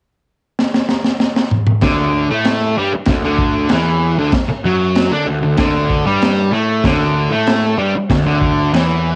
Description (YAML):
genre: garage rock duo or trio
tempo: 96 BPM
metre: 4/4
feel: straight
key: D major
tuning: A4 = 440 Hz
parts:
  - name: crunchy breakbeat drum kit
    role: drums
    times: 0.6-8.9 s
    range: crash cymbal, kick drum, snare drum, toms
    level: -20 LUFS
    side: equal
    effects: none
  - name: fuzz guitar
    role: riff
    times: 1.8-9.2 s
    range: D3 to D4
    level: -18 LUFS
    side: equal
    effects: distortion, cassette tape
  - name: fuzz picked electric bass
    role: bass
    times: 1.8-9.2 s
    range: D2 to D3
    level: -23 LUFS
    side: equal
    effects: overdrive
room: studio ambience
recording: home recording on cassette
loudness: -15 LUFS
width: mono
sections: 0.0-1.8 A section; 1.8-9.2 B section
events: drum fill 0.6-1.8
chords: 0.0 N.C.; 1.8 D